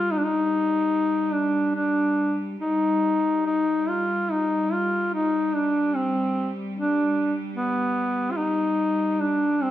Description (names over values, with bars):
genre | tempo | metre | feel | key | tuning
caucasian folk, Caucasian lament | 73 BPM | 3/4 | rubato | unclear | A4 = 440 Hz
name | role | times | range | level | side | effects
warm duduk | melody | 0.0-9.7 s | B3 to F4 | -22 LUFS | left 1 dB | none
rich studio cello section | drone | 0.0-9.7 s | G3 | -31 LUFS | right 1 dB | none
room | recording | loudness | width
moderate recital hall reverb, RT60 1.4 s | dark, warm production | -21 LUFS | side -13 dB against mid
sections
0.0-9.7 A section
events
none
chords
none